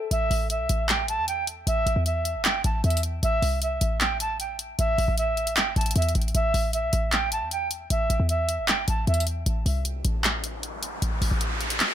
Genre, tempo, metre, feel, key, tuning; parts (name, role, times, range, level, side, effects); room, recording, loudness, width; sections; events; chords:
hip hop, trap; 154 BPM; 4/4; half-time; A minor; A4 = 440 Hz
jazz flute; melody; 0.1-9.2 s; E5 to A5; -27 LUFS; right 2 dB; low-pass filter, ping-pong delay
short 808-style bass; bass; 0.1-11.8 s; G1 to E2; -26 LUFS; equal
trap drum kit; drums; 0.1-11.9 s; handclaps, hi-hat; -26 LUFS; equal; overdrive
riser; sound effects; 10.0-11.9 s; -32 LUFS; left 1 dB
little or no reverb; -22 LUFS; side -10 dB against mid
0.1-11.9 A section
riser 10.0-11.9
0.1 A5; 3.2 Am; 6.3 A5; 9.5 Am